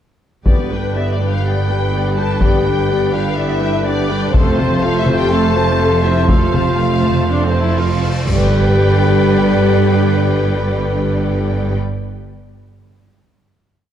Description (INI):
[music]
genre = cinematic, epic orchestral film score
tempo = 123 BPM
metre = 4/4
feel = straight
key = G mixolydian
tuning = A4 = 440 Hz
[part]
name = warm symphonic violin section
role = melody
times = 0.5-11.8 s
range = B4 to A5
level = -25 LUFS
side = left 5 dB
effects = none
[part]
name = warm symphonic violin section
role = second line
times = 0.5-11.8 s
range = A4 to A5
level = -25 LUFS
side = left 4 dB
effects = none
[part]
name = warm symphonic viola section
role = accompaniment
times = 0.5-11.8 s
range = G3 to A4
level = -22 LUFS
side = right 1 dB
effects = none
[part]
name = mellow French horn section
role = sustained chords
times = 0.5-11.8 s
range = B3 to A4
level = -22 LUFS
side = left 6 dB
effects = none
[part]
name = mellow trombone section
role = sustained chords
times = 0.5-11.7 s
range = C3 to A3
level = -23 LUFS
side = right 2 dB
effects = none
[part]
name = mellow trumpet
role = stabs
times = 0.5-11.7 s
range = B4 to C5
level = -24 LUFS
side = right 3 dB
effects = none
[part]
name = rich symphonic cello section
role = bass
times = 0.5-11.7 s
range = F2 to G2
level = -20 LUFS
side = right 1 dB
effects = none
[part]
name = rich symphonic double bass section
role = bass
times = 0.5-11.8 s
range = F1 to G1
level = -20 LUFS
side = right 2 dB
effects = none
[part]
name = taiko ensemble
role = drums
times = 0.5-7.3 s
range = none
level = -16 LUFS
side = left 1 dB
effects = none
[part]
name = cymbal swell and impact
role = sound effects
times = 7.5-10.2 s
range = none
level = -25 LUFS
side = left 1 dB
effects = none
[sound]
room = moderate scoring stage reverb, RT60 1.9 s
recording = dark, warm production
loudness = -13 LUFS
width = side -10 dB against mid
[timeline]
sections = 0.5-8.3 theme; 8.3-12.2 final chord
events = cymbal swell 7.5-8.3; impact 8.3-10.2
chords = 0.5 G; 4.3 F; 8.3 G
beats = | 0.46 0.95 1.44 1.93 | 2.41 2.89 3.37 3.86 | 4.34 4.82 5.31 5.80 | 6.29 6.79 7.29 7.78 | 8.27 8.76 9.25 9.74 | 10.23 10.72 11.21 11.69